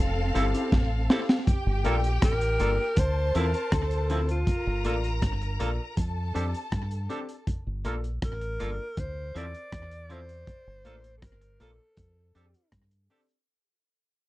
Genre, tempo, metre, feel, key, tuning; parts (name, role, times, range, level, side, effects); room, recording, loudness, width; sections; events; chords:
lovers rock reggae; 80 BPM; 4/4; straight; G dorian; A4 = 442 Hz
breathy alto saxophone; melody; 0.0-12.7 s; F4 to D5; -33 LUFS; equal; tape echo
warm studio string section; second line; 0.0-7.4 s; C4 to Bb5; -34 LUFS; equal
deep dub fingered electric bass; bass; 0.0-13.1 s; F1 to G2; -29 LUFS; equal
warm concert grand piano; accompaniment; 0.3-13.2 s; Bb3 to A4; -34 LUFS; left 4 dB; slapback echo
twangy electric guitar; stabs; 0.3-13.2 s; F3 to A4; -33 LUFS; right 3 dB
crunchy breakbeat drum kit; drums; 0.4-13.5 s; hi-hat, kick drum, rim click, snare drum; -25 LUFS; equal; slapback echo
little or no reverb; dry, close 1970s-style studio recording; -25 LUFS; side -17 dB against mid
0.0-1.5 A section; 1.5-13.5 B section
drum fill 0.7-1.5; fade-out 1.5-13.5
0.0 Fmaj7; 1.5 Gm9; 3.0 Dm9; 4.5 Gm9; 6.0 F69; 7.5 Gm9; 9.0 Dm9; 10.5 Gm9; 12.0 F69